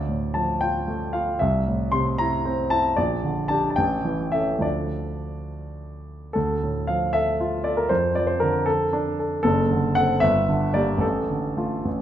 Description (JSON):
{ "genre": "classical, romantic character piece for solo piano", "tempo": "68-80 BPM (dotted quarters)", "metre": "6/8", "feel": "rubato", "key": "D minor", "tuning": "A4 = 441 Hz", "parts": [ { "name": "warm grand piano", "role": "solo", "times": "0.0-12.0 s", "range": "F#1 to C6", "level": "-21 LUFS", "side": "equal", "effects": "none" } ], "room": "wet recital hall reverb, RT60 1.5 s", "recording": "minimal, uncompressed stereo recording", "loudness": "-21 LUFS", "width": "side -10 dB against mid", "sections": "0.0-6.4 A section; 6.4-12.0 A section", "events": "none", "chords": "0.0 Dm; 1.4 Am/C; 3.0 Gm/Bb; 3.8 A7; 4.6 Dm; 7.9 Dm/F; 9.4 D7/F#; 10.2 Gm; 11.0 Dm/A", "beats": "0.62 | 1.41 2.19 | 2.98 3.77 | 4.63 5.50 | 6.35 7.15 | 7.92 8.68 | 9.44 10.22 | 11.03 11.86" }